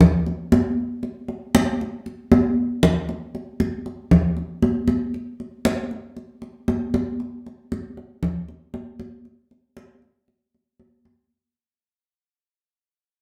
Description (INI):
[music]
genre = latin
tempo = 117 BPM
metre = 4/4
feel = straight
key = none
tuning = none
[part]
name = congas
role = percussion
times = 0.0-11.3 s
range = none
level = -22 LUFS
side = equal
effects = none
[sound]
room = wet studio reverb, RT60 0.8 s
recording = heard from further back in the room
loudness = -23 LUFS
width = mono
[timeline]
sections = 0.0-3.1 A section; 3.1-11.3 B section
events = drum fill 2.3-3.1; fade-out 3.1-11.3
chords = none